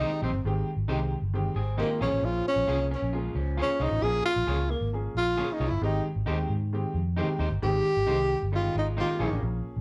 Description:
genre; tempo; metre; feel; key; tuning
soul; 134 BPM; 4/4; straight; unclear; A4 = 440 Hz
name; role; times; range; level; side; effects
breathy tenor saxophone; melody; 0.0-9.4 s; Bb3 to Ab4; -30 LUFS; equal; none
warm upright piano; accompaniment; 0.0-9.8 s; Eb3 to Ab4; -36 LUFS; equal; none
electric guitar through a small old amp; riff; 0.0-4.0, 8.5-9.4 s; F3 to Bb4; -41 LUFS; equal; none
electric guitar at the edge of break-up; stabs; 0.0-9.3 s; Eb4 to Db5; -37 LUFS; equal; none
vintage muted fingered electric bass; bass; 0.0-9.8 s; G1 to Ab2; -32 LUFS; equal; none
room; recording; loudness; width
light reverb; band playing live in one room; -28 LUFS; mono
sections
0.0-9.8 A section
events
tenor saxophone solo 0.0-9.8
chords
0.0 Abmaj7; 2.0 Bbm7; 5.8 Abmaj7; 9.2 Bbm7

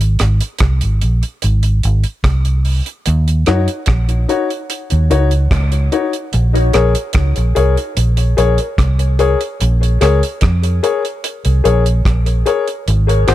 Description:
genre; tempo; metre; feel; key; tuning
dub reggae; 73 BPM; 4/4; straight; Bb minor; A4 = 440 Hz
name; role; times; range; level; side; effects
vintage muted fingered electric bass; bass; 0.0-13.3 s; Ab1 to Gb2; -13 LUFS; equal; none
deep reggae drum kit; drums; 0.0-13.3 s; hi-hat, kick drum, rim click; -19 LUFS; right 1 dB; none
dark upright piano; stabs; 3.5-13.3 s; Eb4 to Db5; -17 LUFS; left 5 dB; tape echo
room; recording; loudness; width
small room ambience; none; -12 LUFS; side -14 dB against mid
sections
0.0-13.3 A section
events
break 0.0-3.1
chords
0.0 Ab; 3.1 Ebm7; 6.3 Bbm7

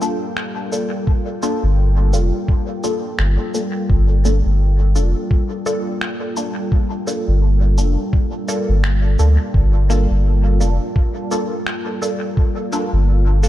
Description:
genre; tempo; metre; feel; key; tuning
ambient dub; 85 BPM; 4/4; swing 59% on 16ths; G minor; A4 = 439 Hz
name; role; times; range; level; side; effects
deep dark ambient pad; sustained chords; 0.0-13.5 s; G3 to G5; -25 LUFS; equal; chorus, built-in reverb
filtered dub chord stab; stabs; 0.0-13.5 s; Bb3 to A4; -24 LUFS; left 1 dB; phaser, analog chorus, dub echo
electronic cabasa and finger snaps; drums; 0.0-13.5 s; none; -28 LUFS; equal; dub echo
electronic kick drum; drums; 1.1-12.5 s; none; -16 LUFS; equal; none
warm sub bass; bass; 1.6-13.5 s; F1 to D2; -14 LUFS; equal; none
room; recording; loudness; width
light reverb; none; -16 LUFS; side -14 dB against mid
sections
0.0-13.5 A section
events
none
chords
0.0 Gm7

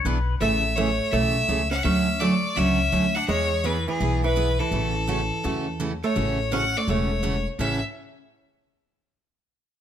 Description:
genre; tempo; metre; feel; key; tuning
country, western swing; 167 BPM; 4/4; swing 64% on 8ths; A major; A4 = 439 Hz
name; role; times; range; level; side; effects
upright bass; bass; 0.0-7.8 s; E1 to E2; -27 LUFS; left 2 dB; none
picked steel-string acoustic guitar; accompaniment; 0.1-7.8 s; A2 to G#4; -27 LUFS; right 3 dB; none
bright fiddle; melody; 0.4-7.8 s; G#4 to F#5; -26 LUFS; left 2 dB; none
archtop guitar, miked and amplified; second line; 0.4-7.8 s; E3 to D4; -28 LUFS; right 4 dB; none
room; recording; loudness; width
moderate echo chamber reverb, RT60 1.3 s; none; -21 LUFS; side -10 dB against mid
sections
0.0-6.2 A section; 6.2-7.6 B section; 7.6-9.0 C section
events
none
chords
0.4 Amaj7; 1.8 Dmaj7; 3.3 E; 4.7 A6

